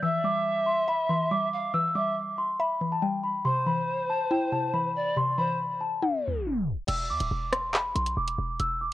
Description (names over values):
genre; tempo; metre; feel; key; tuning
hip hop, drill; 140 BPM; 4/4; half-time; E minor; A4 = 439 Hz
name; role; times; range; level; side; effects
celesta; melody; 0.0-8.9 s; F5 to E6; -28 LUFS; left 1 dB; low-pass filter, digital delay
bright reedy pan flute; second line; 0.0-6.9 s; C5 to F5; -31 LUFS; right 1 dB; digital delay
mallet-like synth pluck; accompaniment; 0.0-6.9 s; C3 to E5; -31 LUFS; left 1 dB; chorus, phaser, low-pass filter
reverse cymbal; sound effects; 6.2-6.9 s; none; -50 LUFS; left 6 dB; none
short 808-style bass; bass; 6.9-8.9 s; D1 to E2; -32 LUFS; equal; none
drill drum kit; drums; 6.9-8.7 s; crash cymbal, handclaps, hi-hat, rim click; -31 LUFS; equal; none
room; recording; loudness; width
light reverb; worn, warbling old tape, cassette tape, warbly pitch drift, tape stop; -25 LUFS; side -15 dB against mid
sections
0.0-6.9 A section; 6.9-8.9 B section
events
tape stop 6.0-6.9; reverse cymbal 6.2-6.9; filter sweep 6.9-8.9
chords
0.0 Em; 3.5 C; 6.9 E5